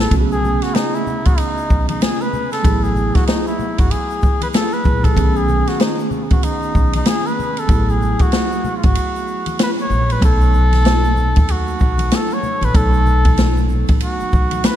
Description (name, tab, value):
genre	hip hop, jazz-hop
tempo	95 BPM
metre	4/4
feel	swing 60% on 16ths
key	unclear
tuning	A4 = 435 Hz
part	trumpet with cup mute	melody	0.0-14.8 s	D#4 to C#5	-21 LUFS	equal	ping-pong delay
part	mellow tine electric piano	accompaniment	0.0-14.8 s	C#3 to A4	-23 LUFS	right 3 dB	medium stereo tremolo
part	upright bass	bass	0.0-14.6 s	G#1 to D#2	-18 LUFS	equal	none
part	open jazz drum kit	drums	0.1-14.8 s	hi-hat, kick drum, ride cymbal, snare drum	-17 LUFS	equal	none
part	tube shaker and congas	percussion	0.1-14.8 s	none	-32 LUFS	left 3 dB	none
room	light reverb, studio reverb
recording	none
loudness	-14 LUFS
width	side -11 dB against mid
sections	0.1-10.2 A section; 10.2-14.8 B section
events	break 9.0-10.2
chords	0.1 Bsus2; 2.6 F#m11; 5.2 B13; 7.7 F#m11; 10.2 B7